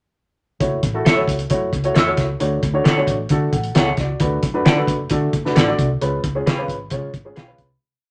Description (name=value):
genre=uptempo 1960s-style soul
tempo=133 BPM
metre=4/4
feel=straight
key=F# minor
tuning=A4 = 440 Hz
part: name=warm upright piano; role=accompaniment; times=0.6-7.7 s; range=G#3 to F#5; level=-24 LUFS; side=equal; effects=none
part: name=vintage muted fingered electric bass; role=bass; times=0.6-7.8 s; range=F#1 to D3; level=-27 LUFS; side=equal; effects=none
part: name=cloth-damped thuddy drum kit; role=drums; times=0.6-7.7 s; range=hi-hat, kick drum, snare drum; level=-22 LUFS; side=equal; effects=none
part: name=electric guitar through a small old amp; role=stabs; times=1.1-7.5 s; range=G#4 to F#5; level=-23 LUFS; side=equal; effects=phaser
room=moderate small room reverb, RT60 0.6 s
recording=none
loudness=-19 LUFS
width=mono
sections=0.6-7.8 verse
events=fade-out 6.0-7.8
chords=0.6 F#m7; 2.4 Dmaj7; 4.2 Bm7; 6.0 C#7